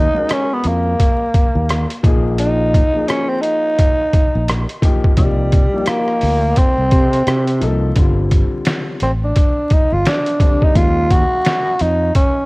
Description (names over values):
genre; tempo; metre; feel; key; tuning
hip hop, jazz-hop; 86 BPM; 4/4; swing 61% on 16ths; G minor; A4 = 440 Hz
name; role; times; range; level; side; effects
growling tenor saxophone; melody; 0.0-12.5 s; G3 to Gb4; -17 LUFS; equal; none
fretless electric bass; bass; 0.0-12.1 s; G1 to C3; -17 LUFS; equal; wide subtle chorus
dark grand piano; accompaniment; 0.1-11.8 s; D3 to F5; -23 LUFS; left 3 dB; none
trip hop sampler-style drum kit; drums; 0.3-12.4 s; hi-hat, kick drum, rim click, snare drum; -16 LUFS; equal; cassette tape
room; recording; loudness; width
digital ambience; home recording on cassette, vinyl crackle; -13 LUFS; side -24 dB against mid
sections
0.0-8.0 A section; 8.0-12.5 B section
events
tenor saxophone solo 8.0-12.5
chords
0.0 Ebm9; 2.0 Bb5; 5.2 Cm7; 8.0 G5; 10.8 Ebm9